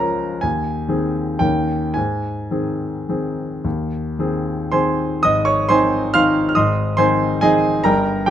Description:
classical, piano waltz; 104-146 BPM; 3/4; rubato; Ab major; A4 = 440 Hz
clear concert grand piano; solo; 0.0-8.3 s; G1 to F6; -16 LUFS; equal
light reverb; close, detailed microphones; -16 LUFS; side -10 dB against mid
0.0-5.2 A section; 5.2-8.3 B section
0.4 Ab/Eb; 1.4 Eb7; 2.0 Ab

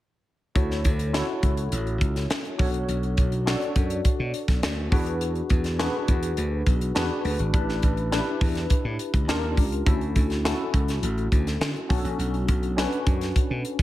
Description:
polished 1980s jazz-funk pop; 103 BPM; 4/4; straight; D major; A4 = 441 Hz
bright tine electric piano; accompaniment; 0.5-13.8 s; C#4 to D5; -29 LUFS; left 1 dB; fast stereo tremolo, analog chorus
slap bass; bass; 0.6-13.8 s; G#1 to D3; -27 LUFS; equal
tight funk drum kit; drums; 0.6-13.8 s; hi-hat, kick drum, snare drum; -24 LUFS; equal; gated reverb
little or no reverb; -22 LUFS; side -15 dB against mid
0.6-13.8 A section
0.6 Dmaj9; 2.6 Bm7; 4.9 E7; 7.5 A7sus4; 9.3 Ebmaj9; 9.9 Dmaj9; 11.9 Bm7

